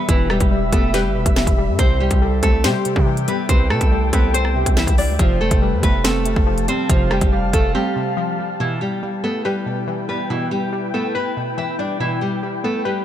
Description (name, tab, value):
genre	hip hop, drill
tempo	141 BPM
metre	4/4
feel	half-time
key	E phrygian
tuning	A4 = 440 Hz
part	nylon-string guitar	melody	0.0-13.0 s	E3 to E5	-23 LUFS	equal	low-pass filter, ping-pong delay
part	warbly dusty pluck	accompaniment	0.0-13.0 s	B2 to C5	-25 LUFS	left 1 dB	chorus, low-pass filter
part	glassy FM pad	sustained chords	0.0-13.0 s	E4 to B5	-27 LUFS	left 2 dB	ensemble chorus, built-in reverb
part	breathy flute-like synth lead	second line	0.1-8.6 s	G4 to F5	-28 LUFS	right 4 dB	chorus, ping-pong delay
part	distorted 808-style bass	bass	0.1-7.7 s	E1 to C3	-21 LUFS	equal	distortion
part	drill drum kit	drums	0.1-7.6 s	hi-hat, kick drum, rim click, snare drum	-18 LUFS	equal	none
room	little or no reverb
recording	none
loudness	-16 LUFS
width	side -11 dB against mid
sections	0.0-8.6 A section; 8.6-13.0 B section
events	break 7.7-8.6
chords	0.0 Em; 1.8 C; 5.2 Fadd9; 8.6 Em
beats	| 0.09 0.51 0.94 1.36 | 1.79 2.21 2.64 3.07 | 3.49 3.92 4.34 4.77 | 5.19 5.62 6.04 6.47 | 6.90 7.32 7.75 8.17 | 8.60 9.02 9.45 9.87 | 10.30 10.72 11.15 11.58 | 12.00 12.43 12.85